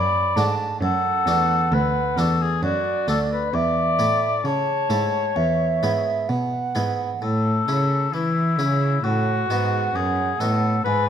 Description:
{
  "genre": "classical, baroque-style sonata movement with continuo",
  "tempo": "66 BPM",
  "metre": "4/4",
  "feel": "straight",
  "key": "A major",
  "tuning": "A4 = 440 Hz",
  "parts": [
    { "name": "mellow oboe", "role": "melody", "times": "0.0-11.1 s", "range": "E4 to D5", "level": "-23 LUFS", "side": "left 6 dB", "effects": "none" },
    { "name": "bright baroque flute", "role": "second line", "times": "0.0-11.1 s", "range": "D5 to B5", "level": "-25 LUFS", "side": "right 7 dB", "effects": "none" },
    { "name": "harpsichord", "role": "accompaniment", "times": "0.0-11.1 s", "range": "D2 to A4", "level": "-28 LUFS", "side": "left 1 dB", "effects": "none" },
    { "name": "dark cello", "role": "bass", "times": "0.0-11.1 s", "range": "D2 to E3", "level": "-24 LUFS", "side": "right 1 dB", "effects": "none" }
  ],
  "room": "moderate recital hall reverb, RT60 1.4 s",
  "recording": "close, detailed microphones",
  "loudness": "-19 LUFS",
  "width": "side -8 dB against mid",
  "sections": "0.0-11.1 A section",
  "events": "none",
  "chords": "0.0 D; 3.5 A/E; 5.4 E; 7.2 A; 9.0 B7",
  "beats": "0.82 1.72 2.63 | 3.54 4.45 5.37 6.29 | 7.22 8.14 9.04 9.95 | 10.86"
}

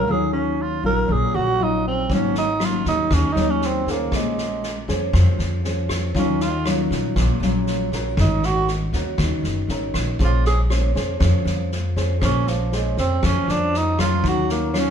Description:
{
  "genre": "bossa nova",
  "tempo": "119 BPM",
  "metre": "4/4",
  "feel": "straight",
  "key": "Bb minor",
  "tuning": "A4 = 444 Hz",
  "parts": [
    { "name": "growling tenor saxophone", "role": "melody", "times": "0.0-14.9 s", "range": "F3 to Bb4", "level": "-23 LUFS", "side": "right 4 dB", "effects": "none" },
    { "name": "nylon-string guitar", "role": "accompaniment", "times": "0.0-14.9 s", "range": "Ab2 to C5", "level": "-24 LUFS", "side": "left 2 dB", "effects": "none" },
    { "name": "upright bass", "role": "bass", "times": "0.0-14.9 s", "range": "Gb1 to F2", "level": "-22 LUFS", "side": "equal", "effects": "none" },
    { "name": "swinging big-band drum kit", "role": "drums", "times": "2.1-14.9 s", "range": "kick drum, rim click, snare drum", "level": "-27 LUFS", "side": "equal", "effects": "none" }
  ],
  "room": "moderate stone room reverb, RT60 1.1 s",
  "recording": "band playing live in one room",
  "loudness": "-18 LUFS",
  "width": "side -8 dB against mid",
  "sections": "0.0-14.9 A section",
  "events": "tenor saxophone solo 0.0-14.9",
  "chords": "0.0 Ebm9; 2.1 Ab9sus4; 4.1 Bbm9; 6.1 Ebm9; 8.2 Ab9sus4; 10.2 Bbm9; 14.2 Ebm9",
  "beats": "| 0.07 0.57 1.08 1.59 | 2.09 2.60 3.11 3.61 | 4.12 4.62 5.13 5.64 | 6.14 6.65 7.15 7.66 | 8.16 8.67 9.18 9.68 | 10.19 10.70 11.20 11.71 | 12.21 12.72 13.23 13.73 | 14.24 14.74"
}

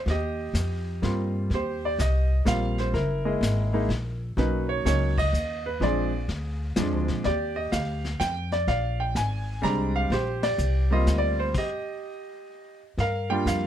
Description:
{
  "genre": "jazz piano trio",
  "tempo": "126 BPM",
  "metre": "3/4",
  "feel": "swing 66% on 8ths",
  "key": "Eb major",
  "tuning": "A4 = 441 Hz",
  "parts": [
    { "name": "clear baby grand piano", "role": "melody", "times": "0.1-13.7 s", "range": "F3 to Bb5", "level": "-27 LUFS", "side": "right 1 dB", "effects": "none" },
    { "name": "upright bass", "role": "bass", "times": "0.1-13.7 s", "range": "Gb1 to G2", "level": "-26 LUFS", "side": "equal", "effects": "none" },
    { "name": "vintage brush drum kit", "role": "drums", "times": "0.1-13.7 s", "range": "brushed snare drum, crash cymbal, hi-hat, kick drum, ride cymbal, snare drum", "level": "-34 LUFS", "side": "left 2 dB", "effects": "none" }
  ],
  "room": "little or no reverb",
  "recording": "close, detailed microphones",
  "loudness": "-24 LUFS",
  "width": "side -10 dB against mid",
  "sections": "0.0-1.5 A section; 1.5-13.0 A section",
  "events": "band accent 5.1, 10.4; stop 11.5-13.0",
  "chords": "0.0 Eb69; 2.9 Gb13; 4.4 Bmaj7; 5.8 Bb7; 7.2 Ebmaj9; 8.7 Bb13; 10.1 Eb69; 13.0 Gm7",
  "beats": "| 0.07 0.55 1.03 | 1.51 1.99 2.46 | 2.94 3.42 3.90 | 4.38 4.85 5.33 | 5.81 6.29 6.77 | 7.25 7.72 8.20 | 8.68 9.16 9.64 | 10.11 10.59 11.07 | 11.55 12.03 12.51 | 12.98 13.46"
}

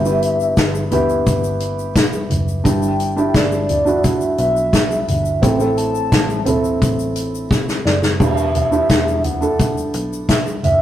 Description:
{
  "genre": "piano-driven pop",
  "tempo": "86 BPM",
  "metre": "4/4",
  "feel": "straight",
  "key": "E minor",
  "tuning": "A4 = 439 Hz",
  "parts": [
    { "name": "hollow clarinet-like synth lead", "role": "melody", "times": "0.0-10.8 s", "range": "D5 to A5", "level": "-20 LUFS", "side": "equal", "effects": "chorus" },
    { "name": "felt-muted upright piano", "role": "accompaniment", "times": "0.0-10.8 s", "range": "G2 to A4", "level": "-20 LUFS", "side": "right 1 dB", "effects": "none" },
    { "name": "vintage muted picked electric bass", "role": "bass", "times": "0.0-10.8 s", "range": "E1 to B1", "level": "-23 LUFS", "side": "equal", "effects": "none" },
    { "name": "tube shaker", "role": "percussion", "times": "0.1-10.6 s", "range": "none", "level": "-38 LUFS", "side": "left 5 dB", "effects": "none" },
    { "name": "soft-mallet drum kit", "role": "drums", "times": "0.2-10.8 s", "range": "crash cymbal, hi-hat, kick drum, snare drum, toms", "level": "-18 LUFS", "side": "left 1 dB", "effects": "none" }
  ],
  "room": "moderate stone room reverb, RT60 1.2 s",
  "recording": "rough rehearsal-room recording, tube saturation",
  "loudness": "-15 LUFS",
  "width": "side -12 dB against mid",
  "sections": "0.0-10.8 A section",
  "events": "drum fill 7.5-8.2",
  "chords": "0.0 G6; 2.7 Em7/G; 5.4 Am; 8.2 Em7",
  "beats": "0.57 1.26 1.96 | 2.65 3.35 4.04 4.73 | 5.43 6.12 6.82 7.51 | 8.21 8.90 9.59 10.29"
}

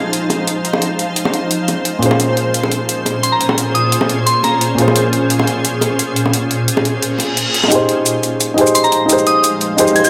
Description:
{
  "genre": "liquid drum and bass",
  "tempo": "174 BPM",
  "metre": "4/4",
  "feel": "straight",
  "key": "F minor",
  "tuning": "A4 = 440 Hz",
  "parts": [
    { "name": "dark grand piano", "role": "accompaniment", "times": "0.0-10.1 s", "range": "Bb2 to C5", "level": "-19 LUFS", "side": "equal", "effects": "low-pass filter, tape echo" },
    { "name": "shimmering ambient pad", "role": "sustained chords", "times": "0.0-10.1 s", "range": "Bb2 to F5", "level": "-21 LUFS", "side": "equal", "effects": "chorus, built-in reverb" },
    { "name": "electronic hi-hat and shaker", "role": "drums", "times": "0.1-10.1 s", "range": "none", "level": "-21 LUFS", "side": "equal", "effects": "high-pass filter on hats, studio ambience, high-pass filter on perc, high-pass filter on snare" },
    { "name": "bongos", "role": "percussion", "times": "0.3-7.7 s", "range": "none", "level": "-23 LUFS", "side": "equal", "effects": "none" },
    { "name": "soft synth bell", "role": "melody", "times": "3.2-4.7, 8.7-10.1 s", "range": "Bb5 to Ab6", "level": "-19 LUFS", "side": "equal", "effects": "chorus, phaser, low-pass filter, delay" },
    { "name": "reverse cymbal", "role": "sound effects", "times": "7.2-7.7 s", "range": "none", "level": "-20 LUFS", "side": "equal", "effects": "none" }
  ],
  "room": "moderate recital hall reverb, RT60 1.3 s, digital ambience",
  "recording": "none",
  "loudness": "-15 LUFS",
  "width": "mono",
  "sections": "0.0-7.7 A section; 7.7-10.1 B section",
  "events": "reverse cymbal 7.2-7.7; build-up 7.7-10.1; filter sweep on grand piano 7.7-10.1",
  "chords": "0.0 Fm9; 2.0 Bbm9; 7.7 Fm9",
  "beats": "0.13 0.47 | 0.82 1.16 1.51 1.85 | 2.20 2.54 2.89 3.23 | 3.58 3.92 4.27 4.61 | 4.96 5.30 5.65 5.99 | 6.34 6.68 7.03 7.37 | 7.72 8.06 8.40 8.75 | 9.10 9.44 9.79"
}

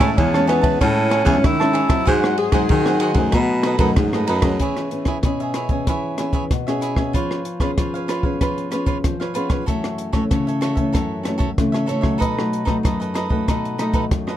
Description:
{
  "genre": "samba and choro",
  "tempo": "95 BPM",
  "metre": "4/4",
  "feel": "straight",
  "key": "E major from 4.6 s",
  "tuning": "A4 = 440 Hz",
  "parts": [
    { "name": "breathy tenor saxophone", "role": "second line", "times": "0.0-3.6 s", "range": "B3 to G#4", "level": "-21 LUFS", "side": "left 1 dB", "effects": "none" },
    { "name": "cavaquinho", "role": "accompaniment", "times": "0.0-14.4 s", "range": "D#4 to A5", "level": "-25 LUFS", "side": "right 4 dB", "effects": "none" },
    { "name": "nylon-string guitar", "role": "accompaniment", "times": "0.0-14.4 s", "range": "F#2 to G#4", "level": "-22 LUFS", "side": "left 2 dB", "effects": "none" },
    { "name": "warm baritone saxophone", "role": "bass", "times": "0.0-4.6 s", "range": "E2 to D#3", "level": "-20 LUFS", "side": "equal", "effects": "none" },
    { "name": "compact cocktail drum kit", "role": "drums", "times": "0.0-14.4 s", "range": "hi-hat, kick drum, ride cymbal, rim click", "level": "-21 LUFS", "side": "equal", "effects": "none" }
  ],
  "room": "light reverb",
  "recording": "dark, warm production",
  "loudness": "-17 LUFS",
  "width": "side -12 dB against mid",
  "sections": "0.0-4.6 A section; 4.6-14.4 B section",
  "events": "tenor saxophone solo 0.0-4.6",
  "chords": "0.0 Amaj7; 2.1 G#7; 3.3 B7; 4.6 E6; 7.1 C#7/E#; 9.7 F#m7; 12.2 B7",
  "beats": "0.18 0.81 1.44 | 2.08 2.71 3.34 3.97 | 4.61 5.24 5.87 6.51 | 7.14 7.78 8.41 9.04 | 9.68 10.31 10.95 11.58 | 12.22 12.85 13.48 14.12"
}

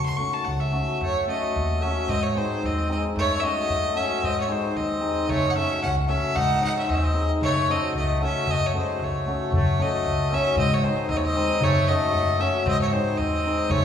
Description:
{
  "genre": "balkan folk, Balkan wedding band",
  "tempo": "113 BPM",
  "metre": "2/4",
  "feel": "swing 54% on 16ths",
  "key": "F# dorian sharp4",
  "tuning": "A4 = 441 Hz",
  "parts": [
    { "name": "rich fiddle", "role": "melody", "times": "0.0-13.8 s", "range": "B#4 to C#6", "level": "-25 LUFS", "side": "equal", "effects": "none" },
    { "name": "upright bass", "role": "bass", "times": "0.0-13.8 s", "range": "C#2 to G#2", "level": "-27 LUFS", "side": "equal", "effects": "none" },
    { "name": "darbuka", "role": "percussion", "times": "0.1-0.9, 5.3-13.8 s", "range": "none", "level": "-30 LUFS", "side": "left 2 dB", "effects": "none" },
    { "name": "cimbalom", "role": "accompaniment", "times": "0.2-13.8 s", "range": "G#3 to C#5", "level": "-28 LUFS", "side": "left 2 dB", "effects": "none" },
    { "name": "mellow trumpet", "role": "second line", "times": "1.0-13.8 s", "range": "G#3 to D#4", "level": "-30 LUFS", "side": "equal", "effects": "none" }
  ],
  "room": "wet recital hall reverb, RT60 1.7 s",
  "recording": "recorded in a church or concert hall, small room ambience",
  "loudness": "-21 LUFS",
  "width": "side -8 dB against mid",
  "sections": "0.0-1.0 A section; 1.0-9.5 B section; 9.5-13.8 B section",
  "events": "speeding up 0.0-13.8; fiddle solo 0.0-1.0",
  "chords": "0.0 F#m; 2.1 G#; 3.2 F#m; 4.2 G#; 5.3 F#m; 6.3 G#; 7.4 F#m; 10.6 G#; 11.6 F#m; 12.7 G#",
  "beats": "0.46 | 1.00 1.54 | 2.08 2.62 | 3.16 3.69 | 4.22 4.76 | 5.29 5.82 | 6.35 6.88 | 7.41 7.94 | 8.46 8.99 | 9.52 10.04 | 10.57 11.09 | 11.62 12.14 | 12.66 13.18 | 13.70"
}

